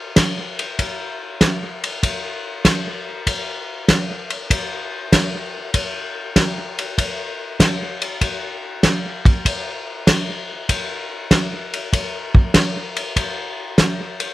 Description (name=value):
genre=jazz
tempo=97 BPM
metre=4/4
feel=swing 68% on 8ths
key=none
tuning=none
part: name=warm soul drum kit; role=drums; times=0.2-14.3 s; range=hi-hat, kick drum, ride cymbal, snare drum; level=-18 LUFS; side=equal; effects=none
room=light reverb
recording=none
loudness=-18 LUFS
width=side -16 dB against mid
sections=0.0-14.3 A section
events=none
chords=none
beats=0.16 0.79 1.41 | 2.02 2.65 3.27 3.88 | 4.50 5.12 5.74 6.36 | 6.98 7.60 8.22 8.84 | 9.45 10.07 10.69 11.31 | 11.92 12.54 13.16 13.77